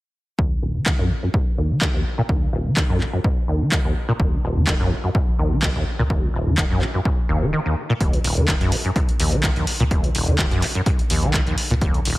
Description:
acid house; 126 BPM; 4/4; swing 54% on 16ths; Eb minor; A4 = 440 Hz
acid bass, saw; riff; 0.4-12.2 s; Eb1 to Eb3; -22 LUFS; equal; tube saturation, ensemble chorus, cassette tape, sidechain pumping, ping-pong delay
electronic kick drum; drums; 0.4-11.9 s; -22 LUFS; equal
punchy analog drum machine; drums; 0.9-12.2 s; handclaps, hi-hat; -25 LUFS; equal
warm sub bass; bass; 4.2-11.9 s; Eb1 to Eb2; -24 LUFS; equal; sidechain pumping
light reverb; heavily compressed radio sound; -18 LUFS; side -18 dB against mid
0.4-8.0 A section; 8.0-12.2 B section
filter sweep on acid bass 0.4-8.0
0.4 N.C.; 8.0 Eb5

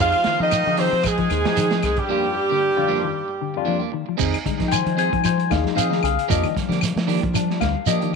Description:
afrobeat; 114 BPM; 4/4; swing 55% on 16ths; F dorian; A4 = 439 Hz
clear horn section; melody; 0.0-3.7 s; G4 to F5; -21 LUFS; right 1 dB; slapback echo
growling tenor saxophone; second line; 0.0-3.7 s; G3 to F4; -29 LUFS; right 12 dB
warm baritone saxophone; second line; 0.0-3.7 s; G2 to F3; -30 LUFS; left 10 dB
barky tine electric piano; accompaniment; 0.0-8.1 s; F2 to Ab5; -25 LUFS; left 12 dB; phaser
clean electric guitar; stabs; 0.0-8.2 s; F3 to Ab4; -28 LUFS; right 13 dB
deep dub fingered electric bass; bass; 0.0-8.2 s; C2 to F3; -24 LUFS; right 1 dB
shekere; percussion; 0.0-8.0 s; -26 LUFS; right 8 dB
vintage drum kit; drums; 0.1-8.1 s; crash cymbal, hi-hat, kick drum, snare drum; -28 LUFS; right 4 dB
claves; percussion; 0.1-7.8 s; -32 LUFS; left 17 dB
mellow electric guitar; arpeggios; 0.3-8.2 s; D3 to G3; -28 LUFS; left 15 dB; vibrato effect
moderate spring reverb, RT60 2.3 s; 1960s-style stereo with parts hard left and right; -18 LUFS; side -5 dB against mid
0.0-4.2 A section; 4.2-8.2 B section
break 2.1-4.2; tine electric piano solo 4.2-8.2
0.0 Fm7; 2.1 Ebmaj7/F; 4.2 Fm7; 6.3 Ebmaj7/F

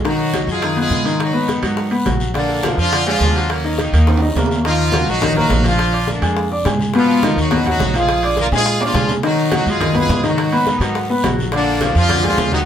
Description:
latin, salsa; 209 BPM; 4/4; straight; Eb harmonic minor; A4 = 439 Hz
clear grand piano; accompaniment; 0.0-12.7 s; Cb3 to D6; -18 LUFS; left 2 dB
upright bass; bass; 0.0-12.7 s; Bb1 to Cb3; -20 LUFS; right 1 dB
congas; percussion; 0.0-12.7 s; -26 LUFS; equal
timbales; percussion; 0.0-12.7 s; -26 LUFS; right 4 dB
brilliant horn section; melody; 0.1-12.6 s; Db3 to Bb4; -20 LUFS; right 1 dB
bongos; percussion; 0.1-12.5 s; -27 LUFS; left 3 dB
guiro; percussion; 0.1-12.7 s; -32 LUFS; left 3 dB
wet studio ambience, RT60 0.5 s; band playing live in one room; -14 LUFS; side -9 dB against mid
0.0-4.6 A section; 4.6-12.7 A section
drum fill 4.1-4.6, 8.5-9.2
0.0 B; 1.2 Abm7; 2.4 Bb7; 3.5 Ebm7; 4.6 Ebmadd9; 5.8 Bb7; 6.9 Abm7; 8.1 Bb7; 9.2 B; 10.4 Abm7; 11.5 Bb7

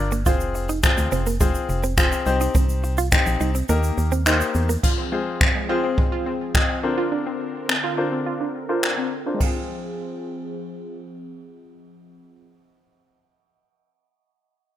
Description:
dance-pop; 105 BPM; 4/4; straight; F dorian; A4 = 439 Hz
clear baby grand piano; accompaniment; 0.0-13.2 s; Bb3 to Eb5; -26 LUFS; left 5 dB; sidechain pumping, low-pass filter
organ-like FM bass; bass; 0.0-4.8 s; F1 to E2; -23 LUFS; equal; sidechain pumping
direct-recorded clean electric guitar; riff; 0.1-4.8 s; Ab3 to F4; -27 LUFS; right 6 dB; analog chorus
jazz brush drum kit; drums; 0.1-9.5 s; crash cymbal, finger snaps, kick drum, ride cymbal, shaker; -21 LUFS; equal
egg shaker; percussion; 0.1-4.8 s; -36 LUFS; right 14 dB
soft supersaw; sustained chords; 4.8-12.5 s; D3 to Bb4; -32 LUFS; equal; sidechain pumping, low-pass filter
analog pluck; arpeggios; 4.8-13.2 s; Ab3 to Ab4; -27 LUFS; right 2 dB; chorus, sidechain pumping, low-pass filter, ping-pong delay
small room ambience; rough home demo mix; -19 LUFS; side -12 dB against mid
0.0-4.8 A section; 4.8-9.4 B section; 9.4-11.7 C section
kick muted 3.7-4.8; filter sweep 4.8-9.4
0.3 Fm; 2.3 Cm; 3.7 Eb; 4.8 Fm; 6.8 Bbadd9; 9.4 Fm

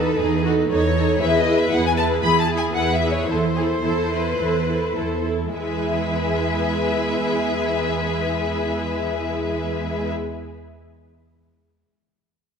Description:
quick classical-period movement for string orchestra; 99-120 BPM; 4/4; straight; E major; A4 = 439 Hz
rich symphonic violin section; melody; 0.0-10.1 s; B4 to B5; -25 LUFS; left 6 dB
clear symphonic violin section; second line; 0.0-10.1 s; F#4 to C#5; -26 LUFS; left 3 dB
rich symphonic viola section; accompaniment; 0.0-10.1 s; G#3 to A4; -24 LUFS; right 2 dB
rich symphonic cello section; bass; 0.0-10.1 s; E2; -25 LUFS; right 4 dB
moderate scoring stage reverb, RT60 1.9 s; -19 LUFS; side -6 dB against mid
0.0-5.5 A section; 5.5-10.3 B section
slowing down 0.2-5.5
0.0 B7/E; 1.2 E; 3.3 Am/E; 5.5 E

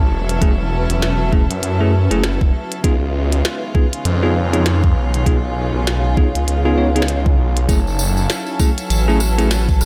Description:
glitch hop; 99 BPM; 4/4; swing 59% on 16ths; F# dorian; A4 = 442 Hz
rich chamber string section; sustained chords; 0.0-9.9 s; C#3 to A4; -28 LUFS; equal; sidechain pumping
phased detuned saw bass; bass; 0.0-8.3 s; E1 to F#2; -20 LUFS; equal; phaser, tube saturation
granular cloud pad; texture; 0.0-9.9 s; C#4 to E6; -29 LUFS; equal; built-in reverb, sidechain pumping
glitchy drum kit; drums; 0.3-9.9 s; hi-hat, rim click, snare drum; -26 LUFS; equal
bell-like tine electric piano; stabs; 0.4-9.5 s; A3 to C#5; -24 LUFS; equal; sidechain pumping, low-pass filter, digital delay
electronic kick drum; drums; 0.4-9.8 s; -18 LUFS; equal; overdrive
tambourine; percussion; 7.7-9.9 s; -29 LUFS; equal
rubbery square bass; bass; 8.9-9.9 s; E1 to A1; -19 LUFS; equal
little or no reverb; -17 LUFS; mono
0.0-9.9 A section
0.0 F#m7; 2.8 C#7; 7.7 F#m7

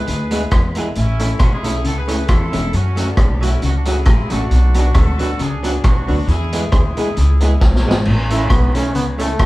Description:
ska; 135 BPM; 4/4; swing 56% on 8ths; A major; A4 = 440 Hz
warm horn section; melody; 0.0-7.8 s; B3 to B4; -27 LUFS; equal
electric guitar at the edge of break-up; riff; 0.1-9.5 s; E2 to F#3; -27 LUFS; left 2 dB
warm upright piano; stabs; 0.1-9.3 s; G#3 to A4; -30 LUFS; left 2 dB
upright bass; bass; 0.1-9.5 s; E1 to F#2; -18 LUFS; equal
vintage drum kit; drums; 0.1-9.5 s; crash cymbal, hi-hat, kick drum, rim click, snare drum; -17 LUFS; equal
archtop guitar, miked and amplified; accompaniment; 0.3-9.3 s; F#3 to A4; -24 LUFS; right 2 dB
bright trombone; melody; 8.3-9.5 s; A3 to E4; -21 LUFS; right 1 dB
light reverb; band playing live in one room, vinyl crackle; -14 LUFS; side -18 dB against mid
0.0-8.1 A section; 8.1-9.5 B section
drum fill 7.6-8.1; trombone solo 8.1-9.5
0.0 E; 1.0 A; 2.7 F#m; 4.5 Bm; 6.3 E; 8.1 A

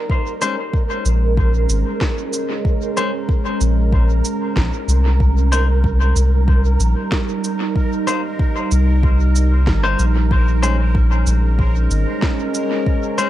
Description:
ambient dub; 94 BPM; 4/4; straight; Bb dorian; A4 = 436 Hz
deep dark ambient pad; sustained chords; 0.0-13.3 s; G3 to C5; -24 LUFS; right 2 dB; chorus, built-in reverb
bubbling stepped-filter texture; texture; 0.0-13.3 s; Bb4; -29 LUFS; right 6 dB; chorus, built-in reverb
electronic kick drum; drums; 0.1-13.0 s; -18 LUFS; equal
clean electric guitar; stabs; 0.4-13.3 s; Ab3 to C5; -25 LUFS; left 4 dB; dub echo
electronic cabasa and snare drum; drums; 0.4-13.3 s; -28 LUFS; right 1 dB; dub echo
soft dub sub bass; bass; 1.1-12.1 s; G1 to C2; -15 LUFS; equal
little or no reverb; echo-heavy mix; -15 LUFS; side -13 dB against mid
0.0-13.3 A section
0.1 Bbm9; 5.2 Cm7; 10.3 Bbm9

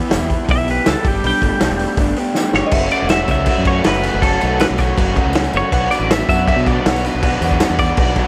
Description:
indie rock; 160 BPM; 4/4; straight; A4 = 440 Hz
twelve-string electric guitar; melody; 0.0-8.1 s; G4 to E5; -23 LUFS; equal; harmonic tremolo
analog string pad; sustained chords; 0.0-2.7 s; G4 to B5; -35 LUFS; equal
overdriven electric guitar; riff; 0.0-8.3 s; F#2 to G4; -24 LUFS; equal
overdriven electric guitar; riff; 0.0-8.3 s; E3 to G4; -27 LUFS; equal
modern bright fingered electric bass; bass; 0.1-8.2 s; E1 to B2; -24 LUFS; equal
loose indie drum kit; drums; 0.1-8.3 s; crash cymbal, hi-hat, kick drum, snare drum; -20 LUFS; equal
tambourine; percussion; 0.1-8.2 s; -39 LUFS; equal
glassy synth bell; second line; 2.7-8.3 s; D#5 to F#5; -30 LUFS; equal
small room ambience; -16 LUFS; mono
0.0-2.7 A section; 2.7-8.3 B section
clean electric guitar solo 0.0-2.7; drum fill 2.4-2.7
0.0 Em; 1.1 Gadd9; 2.7 F#m7; 5.7 Bm

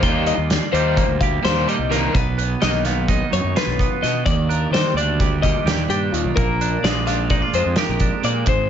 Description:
math rock and midwest emo; 256 BPM (eighths); 9/8; straight; Eb major; A4 = 440 Hz
twelve-string electric guitar; accompaniment; 0.0-8.7 s; Eb2 to G4; -24 LUFS; right 10 dB
twelve-string electric guitar; arpeggios; 0.0-8.7 s; F4 to G5; -23 LUFS; left 7 dB
raw garage guitar; riff; 0.0-2.1 s; Eb3 to Eb4; -24 LUFS; left 1 dB; overdrive
fuzz fingered electric bass; bass; 0.0-8.7 s; Ab1 to Eb3; -23 LUFS; equal; overdrive
loose indie drum kit; drums; 0.0-8.6 s; hi-hat, kick drum, snare drum; -22 LUFS; equal
light reverb; nothing above 7.7 kHz; -17 LUFS; side -9 dB against mid
0.0-2.1 A section; 2.1-8.7 B section
0.0 Ebmaj9; 2.1 Bmaj7; 4.3 Ebmaj7; 6.4 Bb7

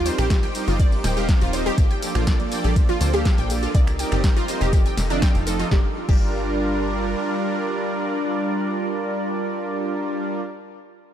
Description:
progressive house; 122 BPM; 4/4; straight; G minor; A4 = 440 Hz
supersaw pad; sustained chords; 0.0-10.4 s; G3 to Eb5; -30 LUFS; right 1 dB; sidechain pumping
tight sequencer bass; bass; 0.0-7.1 s; Eb1 to Eb2; -25 LUFS; equal; sidechain pumping
twinkling granular texture; texture; 0.0-5.7 s; D6; -40 LUFS; right 1 dB
wide unison pluck; arpeggios; 0.1-6.2 s; D4 to G5; -27 LUFS; equal; ensemble chorus, sidechain pumping, ping-pong delay
soft supersaw; stabs; 0.1-10.4 s; F3 to G5; -26 LUFS; right 1 dB; sidechain pumping, ping-pong delay
deep house drum kit; drums; 0.1-6.2 s; crash cymbal, finger snaps, hi-hat, ride cymbal, snare drum, tambourine; -30 LUFS; equal
electronic kick drum; drums; 0.3-6.2 s; -19 LUFS; equal
light reverb, digital ambience; dark, warm production; -19 LUFS; side -10 dB against mid
0.0-5.7 A section; 5.7-9.6 B section
drop 0.0-5.7
0.0 Eb6; 1.8 Bbmaj7; 3.7 Cm7; 4.7 F7; 5.7 Gm7

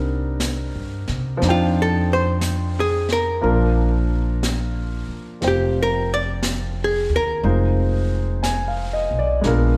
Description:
jazz ballad; 60 BPM; 4/4; swing 66% on 8ths; Bb major; A4 = 440 Hz
warm concert grand piano; accompaniment; 0.0-9.8 s; F3 to Ab5; -26 LUFS; equal
upright bass; bass; 0.0-9.8 s; F1 to C3; -24 LUFS; equal
vintage brush drum kit; drums; 0.4-9.8 s; brushed snare drum, hi-hat, snare drum; -32 LUFS; equal
archtop guitar, miked and amplified; melody; 1.5-8.7 s; F4 to D5; -25 LUFS; equal
moderate concert hall reverb, RT60 2.3 s; recorded in a church or concert hall; -21 LUFS; mono
0.0-9.8 A section
hollow-body jazz guitar solo 0.0-9.8
0.0 Cm9; 1.4 Fsus2; 3.4 Bb6; 7.4 Fm7

